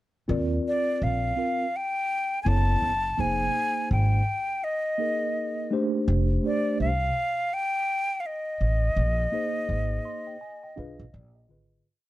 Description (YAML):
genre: hip hop, jazz-hop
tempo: 83 BPM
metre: 4/4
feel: swing 60% on 16ths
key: Eb major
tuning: A4 = 439 Hz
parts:
  - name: mellow tine electric piano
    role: accompaniment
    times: 0.3-11.9 s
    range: D3 to C6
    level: -29 LUFS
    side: right 1 dB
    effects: medium stereo tremolo
  - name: upright bass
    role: bass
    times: 0.3-11.8 s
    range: F1 to Eb2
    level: -25 LUFS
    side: equal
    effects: none
  - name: breathy concert flute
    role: melody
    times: 0.7-11.1 s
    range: D5 to A5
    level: -27 LUFS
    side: left 1 dB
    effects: none
room: small room ambience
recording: dry, close 1970s-style studio recording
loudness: -24 LUFS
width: side -16 dB against mid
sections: 0.3-11.9 A section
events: fade-out 9.0-11.9; tine electric piano fill 9.7-11.9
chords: 0.3 Ebmaj9; 2.5 Gbm7; 3.2 Fm9 (rootless); 6.1 F9; 9.0 Bb9sus4; 11.1 Bb7b9